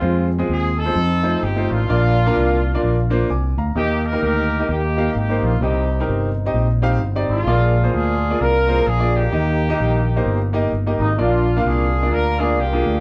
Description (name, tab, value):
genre	uptempo gospel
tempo	129 BPM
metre	4/4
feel	swing 60% on 8ths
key	Eb major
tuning	A4 = 440 Hz
part	warm horn section	melody	0.0-13.0 s	Ab3 to Bb4	-24 LUFS	equal	none
part	clear baby grand piano	accompaniment	0.0-12.9 s	Bb2 to D6	-24 LUFS	equal	none
part	fingered electric bass	bass	0.0-13.0 s	G1 to F2	-22 LUFS	equal	none
room	wet large studio reverb, RT60 0.9 s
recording	band playing live in one room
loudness	-19 LUFS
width	mono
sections	0.0-13.0 A section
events	none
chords	0.0 Fm; 1.0 F7; 1.9 Bb; 3.8 Eb; 5.6 Cm; 7.5 Bb7; 9.3 Eb; 11.2 Bb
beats	| 0.02 0.49 0.96 1.42 | 1.89 2.35 2.82 3.29 | 3.75 4.22 4.68 5.15 | 5.61 6.08 6.54 7.01 | 7.47 7.93 8.40 8.86 | 9.33 9.79 10.26 10.72 | 11.19 11.65 12.12 12.58